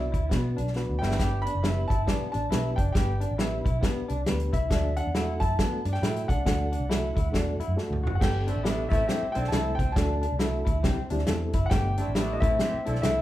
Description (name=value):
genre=uptempo 1960s-style soul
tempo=137 BPM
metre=4/4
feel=swing 61% on 8ths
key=unclear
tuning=A4 = 436 Hz
part: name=clear concert grand piano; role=melody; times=0.0-13.2 s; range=D5 to B5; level=-33 LUFS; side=left 1 dB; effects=none
part: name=reed electric piano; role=accompaniment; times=0.0-13.2 s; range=G3 to D5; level=-34 LUFS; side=left 1 dB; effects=overdrive, fast tremolo
part: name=electric guitar through a small old amp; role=riff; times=0.0-13.2 s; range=B3 to G4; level=-34 LUFS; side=left 1 dB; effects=none
part: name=vintage muted fingered electric bass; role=bass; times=0.0-13.2 s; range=E1 to B2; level=-29 LUFS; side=equal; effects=none
part: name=natural country drum kit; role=drums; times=0.1-13.2 s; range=crash cymbal, hi-hat, kick drum, snare drum, toms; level=-28 LUFS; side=equal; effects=none
part: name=warm horn section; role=second line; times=8.5-13.2 s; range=A3 to A4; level=-38 LUFS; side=right 2 dB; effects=none
room=light reverb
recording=band playing live in one room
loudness=-24 LUFS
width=side -14 dB against mid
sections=0.0-8.2 A section; 8.2-13.2 B section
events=drum fill 0.8-1.2, 7.8-8.2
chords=0.0 Bm; 1.0 G; 4.7 D; 8.2 Gadd9; 8.9 Am; 10.0 D; 10.8 C; 11.7 Gadd9; 12.4 Am